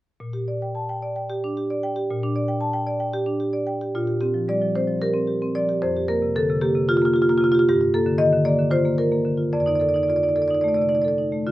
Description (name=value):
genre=classical, contemporary piece for solo marimba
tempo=225 BPM (eighths)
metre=7/8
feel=rubato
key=Bb major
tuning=A4 = 440 Hz
part: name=marimba with medium hard mallets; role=solo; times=0.2-11.5 s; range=F2 to A5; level=-19 LUFS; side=equal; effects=none
room=little or no reverb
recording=close, detailed microphones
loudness=-19 LUFS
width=side -15 dB against mid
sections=0.2-3.9 A section; 3.9-11.5 B section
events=none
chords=0.2 Bb6; 3.9 Bbsus2; 5.8 Fsus24; 7.7 Gm7; 9.5 F6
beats=| 0.21 0.48 0.75 1.02 1.29 1.55 1.82 | 2.08 2.34 2.60 2.86 3.13 3.40 3.67 | 3.95 4.22 4.49 4.76 5.03 5.29 5.56 | 5.82 6.09 6.35 6.62 6.88 7.14 7.41 | 7.67 7.93 8.19 8.46 8.72 8.99 9.26 | 9.53 9.81 10.08 10.36 10.63 10.91 11.18 | 11.46